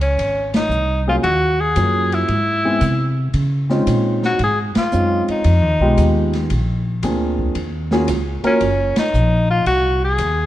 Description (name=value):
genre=jazz, small-group swing and bop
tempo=114 BPM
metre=4/4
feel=swing 68% on 8ths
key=Bb minor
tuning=A4 = 440 Hz
part: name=clear tenor saxophone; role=melody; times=0.0-10.5 s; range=Db4 to Ab4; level=-18 LUFS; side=left 1 dB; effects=none
part: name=upright bass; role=bass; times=0.0-10.5 s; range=Gb1 to Db3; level=-19 LUFS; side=equal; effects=none
part: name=open jazz drum kit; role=drums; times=0.0-10.4 s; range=hi-hat, kick drum, ride cymbal, snare drum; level=-26 LUFS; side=equal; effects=none
part: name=warm baby grand piano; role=accompaniment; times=1.1-8.6 s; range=Gb3 to Bb4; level=-21 LUFS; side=equal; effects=none
room=light reverb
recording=dark, warm production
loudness=-15 LUFS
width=side -14 dB against mid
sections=0.0-10.5 A section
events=band accent 0.4, 4.7, 8.9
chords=0.0 Bbm11 (rootless); 1.2 Ebm11; 2.3 Abaug; 3.3 Dbmaj9; 5.5 Fm7b5; 6.5 Bb7; 7.6 Ebm9; 9.7 Cdim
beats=0.17 0.70 | 1.23 1.76 2.29 2.81 | 3.34 3.87 4.40 4.92 | 5.45 5.98 6.51 7.03 | 7.56 8.09 8.62 9.14 | 9.67 10.20